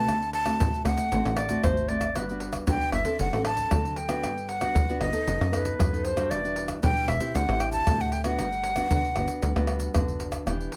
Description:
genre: samba and choro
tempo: 116 BPM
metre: 4/4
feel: straight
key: G major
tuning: A4 = 440 Hz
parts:
  - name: breathy jazz flute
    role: melody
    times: 0.0-9.9 s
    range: Eb5 to A5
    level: -31 LUFS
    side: equal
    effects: none
  - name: nylon-string guitar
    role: accompaniment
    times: 0.0-10.8 s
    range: A2 to A4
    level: -34 LUFS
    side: equal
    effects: none
  - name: plucky analog bass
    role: bass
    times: 0.0-10.7 s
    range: E1 to F#2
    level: -33 LUFS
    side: equal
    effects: none
  - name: egg shaker, surdo, pandeiro and tamborim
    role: percussion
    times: 0.1-10.8 s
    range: none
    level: -32 LUFS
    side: equal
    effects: none
  - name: mellow clarinet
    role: second line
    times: 1.4-6.7 s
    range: B4 to D5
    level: -32 LUFS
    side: equal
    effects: none
room: moderate small room reverb, RT60 0.5 s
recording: none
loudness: -27 LUFS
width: mono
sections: 0.0-10.5 A section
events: none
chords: 0.1 D7; 2.2 Gmaj7; 3.2 D7/F#; 4.2 Gmaj7; 5.3 B7/F#; 6.3 Em9; 7.3 D9sus4; 8.4 Gmaj7

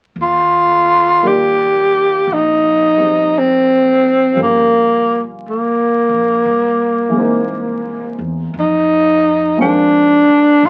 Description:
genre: jazz ballad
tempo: 57 BPM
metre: 4/4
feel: swing 66% on 8ths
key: Eb major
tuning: A4 = 440 Hz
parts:
  - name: growling tenor saxophone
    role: melody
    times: 0.2-10.7 s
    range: Bb3 to G4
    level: -14 LUFS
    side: equal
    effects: none
  - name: upright bass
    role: bass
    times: 0.2-10.7 s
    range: G1 to Ab2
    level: -30 LUFS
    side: equal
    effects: none
  - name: warm upright piano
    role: accompaniment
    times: 1.2-10.7 s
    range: Eb3 to G5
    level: -24 LUFS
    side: equal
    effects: none
room: moderate studio reverb, RT60 0.6 s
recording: very old 78 rpm record, vinyl crackle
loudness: -13 LUFS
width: mono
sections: 0.2-10.7 A section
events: none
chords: 0.2 Ebmaj9; 4.4 Gm7b5; 6.5 C7alt; 8.5 Fm7

